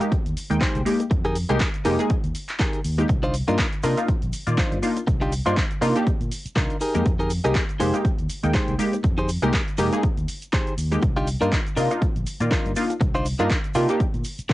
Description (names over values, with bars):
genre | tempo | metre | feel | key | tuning
filtered disco house | 121 BPM | 4/4 | swing 56% on 16ths | C minor | A4 = 440 Hz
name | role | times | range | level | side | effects
funky polysynth comp | accompaniment | 0.0-14.0 s | Eb3 to G5 | -23 LUFS | equal | chorus, phaser, sidechain pumping, cassette tape
punchy analog drum machine | drums | 0.0-14.5 s | cabasa, handclaps, hi-hat | -31 LUFS | equal | sidechain pumping on hats, cassette tape, sidechain pumping on perc
direct-recorded clean electric guitar | riff | 0.1-14.5 s | D4 to C5 | -26 LUFS | equal | vintage 12-bit sampler grit, sidechain pumping, cassette tape
fingered electric bass | bass | 0.1-14.5 s | F1 to C3 | -26 LUFS | equal | sidechain pumping
electronic kick drum | drums | 0.1-14.5 s | none | -24 LUFS | equal | overdrive, cassette tape
egg shaker | percussion | 3.1-14.5 s | none | -43 LUFS | right 8 dB | none
room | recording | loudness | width
little or no reverb | home recording on cassette, nothing above 10.9 kHz | -20 LUFS | side -17 dB against mid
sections
0.0-14.5 A section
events
none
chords
0.0 Fm11; 3.1 Cm11; 6.8 Fm11; 11.0 Cm11